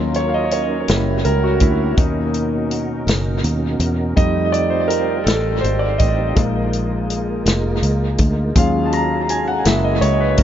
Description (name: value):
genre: slow gospel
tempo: 55 BPM (dotted quarters)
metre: 6/8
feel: straight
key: Eb minor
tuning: A4 = 440 Hz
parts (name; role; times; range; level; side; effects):
- clear concert grand piano; accompaniment; 0.0-10.4 s; F3 to Bb5; -20 LUFS; equal; dub echo
- pedal harmonium; sustained chords; 0.0-10.4 s; B2 to Gb5; -30 LUFS; right 1 dB; none
- tonewheel organ; sustained chords; 0.0-10.4 s; B2 to Db5; -26 LUFS; right 3 dB; slow rotary speaker, chorus vibrato
- fingered electric bass; bass; 0.0-10.4 s; F1 to F2; -20 LUFS; equal; none
- warm soul drum kit; drums; 0.1-10.4 s; hi-hat, kick drum, snare drum; -20 LUFS; equal; dub echo
room: little or no reverb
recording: echo-heavy mix, nothing above 7.5 kHz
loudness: -15 LUFS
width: side -10 dB against mid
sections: 0.0-10.4 A section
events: grand piano solo 0.0-10.4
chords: 0.0 Ebm7; 0.9 Gb7b9; 2.0 Bmaj9/D#; 4.2 F9; 6.4 Bb7sus4; 8.6 Ebm11; 9.7 Gb7